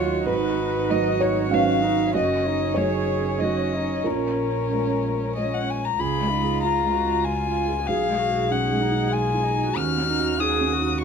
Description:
neoclassical piano and strings; 96 BPM; 3/4; rubato; G# dorian; A4 = 440 Hz
rich violin; melody; 0.0-11.0 s; A#4 to E#6; -25 LUFS; left 8 dB
dark cello; second line; 0.0-11.0 s; C#4 to G#4; -29 LUFS; right 7 dB
felt-muted upright piano; accompaniment; 0.0-11.0 s; B1 to E#5; -26 LUFS; right 4 dB
warm viola; accompaniment; 0.0-11.0 s; C#4 to G#4; -30 LUFS; right 5 dB
warm double bass; bass; 0.0-11.0 s; F#1 to D#2; -30 LUFS; left 1 dB
light reverb; minimal, uncompressed stereo recording; -20 LUFS; side -6 dB against mid
0.0-6.0 A section; 6.0-11.0 B section
0.3 G#m7; 2.1 D#m7/F#; 4.0 A#m7; 6.0 C#7; 7.9 G#m7/B; 9.8 D#m7
| 0.27 0.90 1.51 | 2.14 2.76 3.39 | 4.05 4.70 5.36 | 6.00 6.62 7.25 | 7.88 8.50 9.13 | 9.77 10.39 11.01

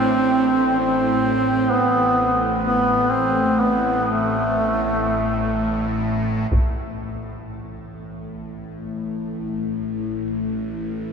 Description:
dark ambient drone; 63 BPM; 4/4; straight; A minor; A4 = 440 Hz
warm duduk; melody; 0.0-6.0 s; A3 to C4; -20 LUFS; right 1 dB; shimmer reverb, diffuse ambient delay
deep dark ambient pad; sustained chords; 0.0-11.1 s; A3 to E5; -30 LUFS; left 2 dB; chorus, built-in reverb, shimmer reverb
bowed-like drone; drone; 0.0-11.1 s; A1 to A2; -26 LUFS; equal; built-in reverb, phaser
taiko ensemble; percussion; 6.5-6.7 s; -25 LUFS; equal; low-pass filter on perc
wet cathedral reverb, RT60 6.5 s; in a vast, echoing space; -18 LUFS; side -6 dB against mid
0.0-6.5 A section; 6.5-11.1 B section
fade-in on synth drone 6.5-11.1
0.0 Asus2
0.82 1.75 | 2.69 3.63 4.58 5.55 | 6.52 7.48 8.43 9.38 | 10.32

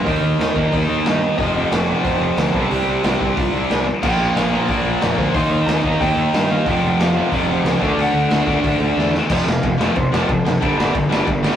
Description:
punk rock; 182 BPM; 4/4; straight; A4 = 439 Hz
lightly driven lead guitar; melody; 0.0-11.3 s; G4 to C6; -25 LUFS; equal
distorted electric guitar; riff; 0.0-11.6 s; F2 to Eb4; -22 LUFS; right 3 dB; distortion
tight distorted guitar; riff; 0.0-11.6 s; F2 to Eb4; -21 LUFS; left 2 dB; distortion
fuzz picked electric bass; bass; 0.1-11.5 s; F1 to G2; -23 LUFS; equal; overdrive
raw garage drum kit; drums; 0.1-11.5 s; crash cymbal, hi-hat, kick drum, ride cymbal, snare drum; -22 LUFS; equal
crunchy overdriven guitar; riff; 4.0-9.3 s; F2 to Eb4; -26 LUFS; equal
moderate studio reverb, RT60 0.7 s; rough rehearsal-room recording, warm saturation; -15 LUFS; side -9 dB against mid
0.0-9.3 A section; 9.3-11.6 B section
half time 0.0-9.3; drum fill 9.0-9.3
0.1 Eb; 1.4 F5; 2.5 C5; 4.0 Bb; 5.3 Eb; 6.7 F5; 7.8 D; 9.3 F; 10.6 G5
| 0.06 0.40 0.72 1.05 | 1.39 1.72 2.04 2.38 | 2.71 3.04 3.37 3.69 | 4.02 4.35 4.68 5.01 | 5.34 5.67 6.00 6.33 | 6.66 6.99 7.32 7.65 | 7.98 8.31 8.64 8.97 | 9.30 9.63 9.96 10.29 | 10.62 10.95 11.28

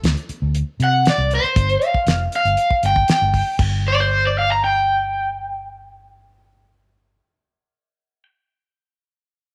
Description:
straight-eighth soul blues; 118 BPM; 4/4; straight; A4 = 440 Hz
vintage muted fingered electric bass; bass; 0.0-7.2 s; F1 to C3; -24 LUFS; equal
damped 70s drum kit; drums; 0.0-3.7 s; crash cymbal, hi-hat, kick drum, snare drum; -23 LUFS; equal
overdriven semi-hollow guitar; melody; 0.8-8.2 s; C5 to Bb5; -20 LUFS; equal; harmonic tremolo
light reverb, small room reverb; -18 LUFS; mono
0.0-3.6 A section; 3.6-7.7 B section
0.0 D7(no3); 1.6 Fsus2; 3.6 N.C.
0.03 0.54 1.05 | 1.56 2.07 2.57 3.08 | 3.59 4.10 4.61 5.11 | 5.62 6.13 6.64 7.14

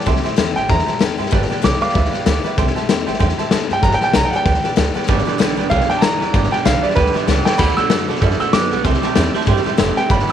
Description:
rockabilly; 191 BPM; 4/4; swing 58% on 8ths; G major; A4 = 436 Hz
clear upright piano; melody; 0.0-10.3 s; B4 to E6; -20 LUFS; right 2 dB
picked steel-string acoustic guitar; accompaniment; 0.0-10.3 s; G2 to G4; -26 LUFS; left 9 dB
raw garage drum kit; drums; 0.0-10.3 s; hi-hat, kick drum, snare drum, splash cymbal; -18 LUFS; left 3 dB
bright upright piano; accompaniment; 0.1-10.3 s; A4 to A5; -26 LUFS; right 13 dB
upright bass; bass; 0.1-10.3 s; F1 to G2; -21 LUFS; right 1 dB
electric guitar through a small old amp; riff; 5.1-10.3 s; G2 to B3; -22 LUFS; right 13 dB; lush chorus
light reverb, small room ambience; 1960s-style stereo with parts hard left and right; -14 LUFS; side -9 dB against mid
0.0-10.3 A section
drum fill 7.3-7.6
0.1 C6; 1.3 G6; 2.6 C6; 3.8 G6; 7.6 D6; 8.9 C6
| 0.07 0.38 0.69 1.01 | 1.32 1.64 1.95 2.26 | 2.58 2.89 3.20 3.52 | 3.83 4.15 4.46 4.77 | 5.09 5.40 5.71 6.03 | 6.34 6.66 6.97 7.28 | 7.60 7.91 8.22 8.54 | 8.85 9.17 9.48 9.79 | 10.11

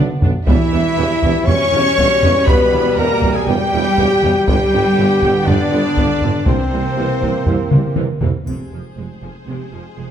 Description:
cinematic, epic orchestral film score; 120 BPM; 4/4; straight; A4 = 440 Hz
rich symphonic viola section; accompaniment; 0.0-10.1 s; C3 to D4; -26 LUFS; right 2 dB
warm trombone section; sustained chords; 0.0-8.2 s; B2 to B3; -25 LUFS; right 4 dB
clear symphonic double bass section; bass; 0.0-10.1 s; F1 to G2; -23 LUFS; right 4 dB
clear tuba; bass; 0.0-8.3 s; E1 to C2; -25 LUFS; right 5 dB
taiko ensemble; drums; 0.2-9.4 s; -18 LUFS; equal
rich symphonic violin section; melody; 0.5-10.1 s; C5 to C#6; -27 LUFS; equal
warm symphonic violin section; second line; 0.5-10.1 s; Ab4 to C#6; -26 LUFS; left 1 dB
mellow French horn section; sustained chords; 0.5-10.1 s; Ab3 to C#5; -18 LUFS; left 4 dB
mellow trumpet; stabs; 0.5-7.9 s; C4 to C#5; -23 LUFS; equal
rich symphonic cello section; bass; 0.5-10.1 s; F2 to C#4; -23 LUFS; right 3 dB
triangle; percussion; 8.5-9.4 s; -49 LUFS; left 1 dB
wet recital hall reverb, RT60 1.6 s; -12 LUFS; side -9 dB against mid
0.0-8.5 A section; 8.5-10.1 B section
drum fill 0.0-0.5, 7.7-8.5
0.5 Em; 4.5 G; 6.5 C7; 8.5 Fm
| 0.47 0.97 1.47 1.97 | 2.47 2.97 3.47 3.97 | 4.47 4.97 5.47 5.97 | 6.47 6.97 7.47 7.97 | 8.47 8.97 9.47 9.97

